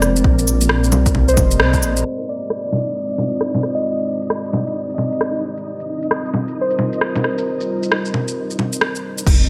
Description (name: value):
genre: future garage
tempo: 133 BPM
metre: 4/4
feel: swing 61% on 16ths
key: F dorian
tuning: A4 = 438 Hz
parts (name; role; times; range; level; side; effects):
- muted felt-like synth keys; accompaniment; 0.0-9.3 s; Bb4 to Eb5; -26 LUFS; equal; chorus, sidechain pumping, digital delay
- deep dark ambient pad; sustained chords; 0.0-9.5 s; G3 to C5; -26 LUFS; equal; chorus, built-in reverb, sidechain pumping
- swelling detuned saw bass; bass; 0.0-2.0, 9.3-9.5 s; F1 to C2; -20 LUFS; equal; sidechain pumping
- deep house drum kit; drums; 0.0-9.4 s; bongos, cabasa, crash cymbal, rim click, shaker; -22 LUFS; equal; overdrive
- flickering grainy texture; texture; 0.0-9.3 s; Bb3 to Eb5; -33 LUFS; equal; built-in reverb, ensemble chorus
- electronic kick drum; drums; 0.2-1.8, 9.3-9.4 s; none; -18 LUFS; equal; overdrive
room: moderate plate reverb, RT60 2.0 s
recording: bright 1980s-style digital production, low-pass filter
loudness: -19 LUFS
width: mono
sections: 0.0-2.1 A section; 2.1-9.3 B section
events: band accent 1.6; filter sweep 2.1-9.3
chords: 0.0 Fm7; 5.7 Eb69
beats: | 0.25 0.70 1.15 1.60 | 2.05 2.50 2.95 3.40 | 3.86 4.31 4.76 5.21 | 5.66 6.11 6.56 7.01 | 7.46 7.92 8.37 8.82 | 9.27